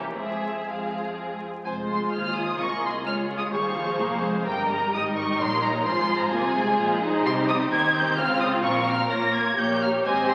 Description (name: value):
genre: quick classical-period movement for string orchestra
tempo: 128 BPM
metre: 3/4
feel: straight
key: F minor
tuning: A4 = 440 Hz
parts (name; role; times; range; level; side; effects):
- warm studio violin section; melody; 0.0-10.3 s; E5 to Bb6; -29 LUFS; equal; none
- rich studio violin section; second line; 0.0-10.3 s; C4 to F5; -32 LUFS; equal; none
- rich studio viola section; accompaniment; 0.0-10.3 s; E3 to Bb4; -29 LUFS; equal; none
- warm studio cello section; bass; 0.0-10.3 s; C2 to Ab4; -36 LUFS; equal; none
- warm studio double bass section; bass; 0.0-10.3 s; F1 to Bb2; -40 LUFS; equal; none
room: wet concert hall reverb, RT60 2.1 s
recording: very old 78 rpm record, vinyl crackle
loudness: -25 LUFS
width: mono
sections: 0.0-1.6 A section; 1.6-10.3 A section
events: none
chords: 0.2 Fm; 3.1 Db; 4.5 Gdim; 5.9 Fm/Ab; 7.3 Cm; 8.2 Db; 8.6 Bbm; 9.6 Gdim/Bb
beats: | 0.18 0.68 1.16 | 1.65 2.12 2.59 | 3.06 3.53 4.00 | 4.47 4.93 5.40 | 5.86 6.33 6.79 | 7.25 7.72 8.18 | 8.65 9.12 9.59 | 10.06